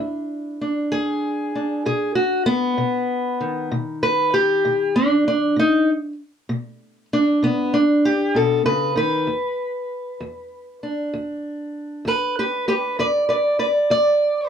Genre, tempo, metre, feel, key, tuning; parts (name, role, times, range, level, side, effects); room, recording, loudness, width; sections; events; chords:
acoustic country blues, solo or duo; 65 BPM (dotted quarters); 12/8; straight; E mixolydian; A4 = 441 Hz
fingerpicked steel-string acoustic guitar; solo; 0.0-14.5 s; E2 to D5; -18 LUFS; equal
moderate studio ambience, RT60 0.5 s; dark, warm production; -18 LUFS; side -8 dB against mid
0.0-14.5 A section
steel-string acoustic guitar solo 0.0-14.5
0.0 E7; 1.8 B; 9.3 E7(no3)